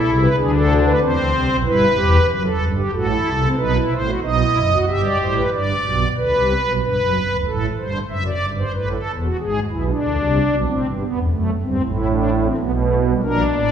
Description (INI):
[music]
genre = classical, baroque-style 3-part fugue for pipe organ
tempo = 93 BPM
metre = 3/4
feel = straight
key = unclear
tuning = A4 = 440 Hz
[part]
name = pipe organ, strings celeste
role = solo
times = 0.0-13.7 s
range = D1 to E5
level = -16 LUFS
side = right 1 dB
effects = none
[sound]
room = wet church reverb, RT60 2.5 s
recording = small room reverb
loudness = -16 LUFS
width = side -8 dB against mid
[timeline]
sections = 0.0-5.5 A section; 5.5-13.7 B section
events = none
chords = 0.0 E7; 1.0 Cmaj9; 1.7 Em; 2.9 F#m7b5/A; 3.6 B7; 4.9 Em/G; 5.5 G; 6.8 Gmaj7; 7.5 Am; 8.7 Esus24; 9.4 E7/G# (rootless); 10.7 Am; 11.3 D7/F#; 12.6 G/B